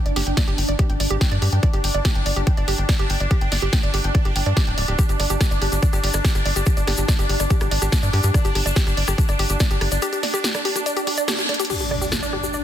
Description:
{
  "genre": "psychedelic trance",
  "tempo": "143 BPM",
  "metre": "4/4",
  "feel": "straight",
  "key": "unclear",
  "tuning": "A4 = 437 Hz",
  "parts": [
    { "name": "bubbling stepped-filter texture", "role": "sustained chords", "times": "0.0-12.6 s", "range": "D4", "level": "-27 LUFS", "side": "right 1 dB", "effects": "chorus, built-in reverb, sidechain pumping" },
    { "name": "woody wave-folded pluck", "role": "riff", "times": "0.1-12.6 s", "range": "G4 to G5", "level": "-27 LUFS", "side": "moving between left 2 dB and right 7 dB", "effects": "chorus, auto-pan, cassette tape, sidechain pumping, dub echo" },
    { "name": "tight sequencer bass", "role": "bass", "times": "0.1-10.0 s", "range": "D1 to G2", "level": "-22 LUFS", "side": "equal", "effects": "none" },
    { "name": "big-room dance drum kit", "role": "drums", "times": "0.1-12.4 s", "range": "crash cymbal, hi-hat, rim click, snare drum", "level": "-26 LUFS", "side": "equal", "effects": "none" },
    { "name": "electronic kick drum", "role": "drums", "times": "0.4-9.7 s", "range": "none", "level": "-20 LUFS", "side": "equal", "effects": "none" },
    { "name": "egg shaker", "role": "percussion", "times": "5.0-12.6 s", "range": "none", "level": "-32 LUFS", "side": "left 6 dB", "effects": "none" },
    { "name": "impact", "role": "sound effects", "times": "11.7-12.6 s", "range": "none", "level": "-28 LUFS", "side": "equal", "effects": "none" },
    { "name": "warbly tape-like pad", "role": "texture", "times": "11.7-12.6 s", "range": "D4 to G4", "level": "-37 LUFS", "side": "left 2 dB", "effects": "none" }
  ],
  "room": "light reverb",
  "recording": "dense, heavily limited modern master",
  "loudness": "-18 LUFS",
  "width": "side -11 dB against mid",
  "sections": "0.0-11.7 A section",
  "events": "break 10.0-11.7; band accent 11.3; drum fill 11.5; impact 11.7-12.6",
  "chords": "0.0 G5"
}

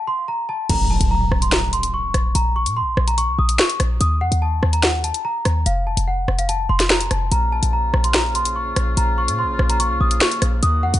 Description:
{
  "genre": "hip hop, drill",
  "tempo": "145 BPM",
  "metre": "4/4",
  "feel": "half-time",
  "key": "Bb harmonic minor",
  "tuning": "A4 = 440 Hz",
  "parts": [
    { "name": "celesta", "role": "melody", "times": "0.0-11.0 s", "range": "F5 to Eb6", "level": "-22 LUFS", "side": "equal", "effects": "none" },
    { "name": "short 808-style bass", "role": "bass", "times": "0.7-11.0 s", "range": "F1 to Bb2", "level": "-20 LUFS", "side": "equal", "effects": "none" },
    { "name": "drill drum kit", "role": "drums", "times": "0.7-11.0 s", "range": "crash cymbal, hi-hat, rim click, snare drum", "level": "-20 LUFS", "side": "equal", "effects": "none" },
    { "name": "impact", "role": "sound effects", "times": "0.7-2.4 s", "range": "none", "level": "-24 LUFS", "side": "equal", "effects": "none" },
    { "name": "warm woodwind section", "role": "sustained chords", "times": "7.3-11.0 s", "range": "Db3 to Gb4", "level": "-29 LUFS", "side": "left 1 dB", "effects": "none" }
  ],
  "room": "little or no reverb",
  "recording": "nothing above 10.7 kHz",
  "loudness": "-17 LUFS",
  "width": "side -13 dB against mid",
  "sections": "0.7-11.0 A section",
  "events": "stop 0.0-0.7; impact 0.7-2.4",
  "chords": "0.0 N.C.; 0.7 Bbm; 4.0 Eb5; 5.7 F; 7.3 Bbm"
}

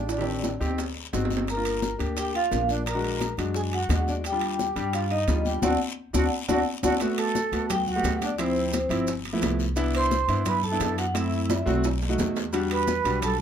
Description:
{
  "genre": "Afro-Cuban jazz",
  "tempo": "174 BPM",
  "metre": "4/4",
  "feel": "straight",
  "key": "G major from 7.0 s",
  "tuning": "A4 = 440 Hz",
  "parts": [
    { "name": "vibraphone with medium hard mallets", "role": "melody", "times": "0.0-13.4 s", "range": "C5 to C6", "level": "-29 LUFS", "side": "right 1 dB", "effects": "none" },
    { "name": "breathy mellow silver concert flute", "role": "second line", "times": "0.0-13.4 s", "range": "C4 to C5", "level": "-32 LUFS", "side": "right 2 dB", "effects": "none" },
    { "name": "warm concert grand piano", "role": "accompaniment", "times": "0.0-13.4 s", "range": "Eb3 to G4", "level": "-28 LUFS", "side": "left 1 dB", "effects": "none" },
    { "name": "upright bass", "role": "bass", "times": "0.0-13.4 s", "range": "G1 to G2", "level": "-30 LUFS", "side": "equal", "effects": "none" },
    { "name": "bongos", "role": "percussion", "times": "0.1-13.4 s", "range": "none", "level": "-37 LUFS", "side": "left 6 dB", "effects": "none" },
    { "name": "congas", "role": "percussion", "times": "0.1-13.4 s", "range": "none", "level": "-34 LUFS", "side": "left 4 dB", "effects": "none" },
    { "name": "guiro", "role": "percussion", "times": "0.1-13.4 s", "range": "none", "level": "-40 LUFS", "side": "left 7 dB", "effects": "none" },
    { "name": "maracas", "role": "percussion", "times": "0.1-13.4 s", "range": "none", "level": "-40 LUFS", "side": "right 7 dB", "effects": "none" },
    { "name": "timbales", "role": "percussion", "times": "0.1-13.4 s", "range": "none", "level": "-35 LUFS", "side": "right 6 dB", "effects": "none" }
  ],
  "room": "light reverb",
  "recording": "minimal, uncompressed stereo recording",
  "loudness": "-23 LUFS",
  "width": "side -8 dB against mid",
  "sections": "0.0-7.0 A section; 7.0-13.4 B section",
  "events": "drum fill 0.1-1.5, 6.5-7.0, 11.5-12.5; band accent 5.6-7.0",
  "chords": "0.1 Am7b5; 0.8 D7b9; 1.5 Gm7; 2.9 Bbaug7; 4.2 Ebmaj7; 5.6 D7; 7.0 Gmaj7; 8.4 Dm7; 9.1 G13; 9.8 Cmaj7; 11.2 F#m7b5; 11.8 B7; 12.5 Em9"
}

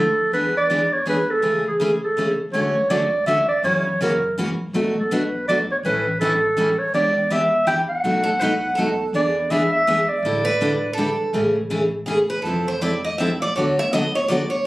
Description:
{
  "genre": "acoustic string swing (jazz manouche)",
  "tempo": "163 BPM",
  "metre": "3/4",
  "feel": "swing 61% on 8ths",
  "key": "D major, A major from 11.3 s",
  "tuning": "A4 = 440 Hz",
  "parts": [
    { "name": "mellow clarinet", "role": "melody", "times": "0.0-11.0 s", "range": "G#4 to G5", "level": "-19 LUFS", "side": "right 1 dB", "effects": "slapback echo, plate reverb" },
    { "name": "picked steel-string acoustic guitar", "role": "accompaniment", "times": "0.0-14.4 s", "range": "B2 to A4", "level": "-22 LUFS", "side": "equal", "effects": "none" },
    { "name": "upright bass", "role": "bass", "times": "0.0-14.4 s", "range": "E1 to F#2", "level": "-33 LUFS", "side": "equal", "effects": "none" },
    { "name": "picked steel-string acoustic guitar", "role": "second line", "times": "8.2-14.6 s", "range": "G#4 to E5", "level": "-23 LUFS", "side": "right 1 dB", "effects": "none" }
  ],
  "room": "moderate club reverb, RT60 0.5 s",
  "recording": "recorded on a phone in the room, club reverb",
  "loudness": "-18 LUFS",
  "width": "side -18 dB against mid",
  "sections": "0.0-2.5 A section; 2.5-11.3 B section; 11.3-14.7 C section",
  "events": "steel-string acoustic guitar solo 11.3-14.7",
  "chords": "0.3 E7; 1.4 Amaj7; 2.5 Dmaj7; 3.6 F#7; 4.7 Bm7; 5.8 A7; 6.9 Em7; 8.0 B7; 9.1 E7; 10.2 A7sus4; 11.3 Amaj7; 12.4 Fmaj7; 13.6 D6"
}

